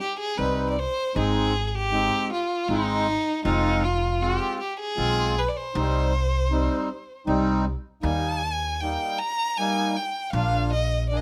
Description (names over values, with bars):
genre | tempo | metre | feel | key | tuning
klezmer | 78 BPM | 3/4 | straight | C harmonic minor, Eb major from 8.0 s | A4 = 440 Hz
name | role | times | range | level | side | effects
rich violin | melody | 0.0-11.2 s | Eb4 to Bb5 | -28 LUFS | equal | plate reverb
accordion | accompaniment | 0.4-11.2 s | G3 to Ab4 | -29 LUFS | equal | none
upright bass | bass | 0.4-11.2 s | F1 to Eb2 | -29 LUFS | equal | none
room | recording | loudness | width
light reverb | none | -25 LUFS | mono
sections
0.0-8.0 A section; 8.0-11.2 B section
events
none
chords
0.0 Cm; 1.1 Ab; 3.4 Fm; 5.7 Cm; 8.0 Eb; 10.3 Bb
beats
0.38 | 1.14 1.91 2.68 | 3.44 4.21 4.98 | 5.74 6.51 7.27 | 8.04 8.80 9.56 | 10.33 11.10